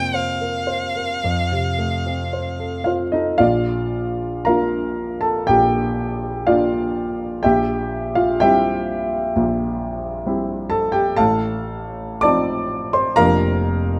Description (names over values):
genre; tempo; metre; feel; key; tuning
classical, romantic duo for violin and grand piano; 54-68 BPM; 4/4; rubato; Bb major; A4 = 444 Hz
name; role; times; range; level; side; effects
rich violin; melody; 0.0-2.9 s; F5 to G5; -26 LUFS; equal; none
warm grand piano; accompaniment; 0.0-14.0 s; F1 to D6; -20 LUFS; equal; none
room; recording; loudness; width
moderate recital hall reverb, RT60 1.3 s; close, detailed microphones; -20 LUFS; mono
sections
0.0-3.4 A section; 3.4-14.0 B section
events
none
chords
0.0 Fsus4; 1.2 F; 3.4 Bb; 7.4 C7/Bb; 11.2 F7/A; 13.2 Bb/F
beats
0.12 1.22 2.32 | 3.39 4.46 5.48 6.48 | 7.44 8.40 9.35 10.25 | 11.18 12.23 13.17